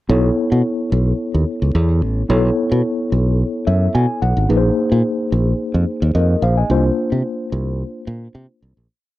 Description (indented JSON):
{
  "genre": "early-eighties boogie funk",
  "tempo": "109 BPM",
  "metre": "4/4",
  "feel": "straight",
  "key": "unclear",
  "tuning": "A4 = 438 Hz",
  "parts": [
    { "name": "mellow tine electric piano", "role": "accompaniment", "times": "0.1-8.9 s", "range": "A#3 to G#5", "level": "-19 LUFS", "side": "left 2 dB", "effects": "fast stereo tremolo" },
    { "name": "fingered electric bass", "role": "bass", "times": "0.1-8.9 s", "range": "G#1 to C3", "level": "-16 LUFS", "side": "equal", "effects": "none" }
  ],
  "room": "little or no reverb",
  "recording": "dry, close 1970s-style studio recording",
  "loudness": "-15 LUFS",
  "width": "side -16 dB against mid",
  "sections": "0.1-8.9 verse",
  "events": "tine electric piano fill 3.4-4.5; fade-out 6.7-8.9",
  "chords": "0.1 B9sus4; 4.5 A#9sus4; 6.7 C9sus4"
}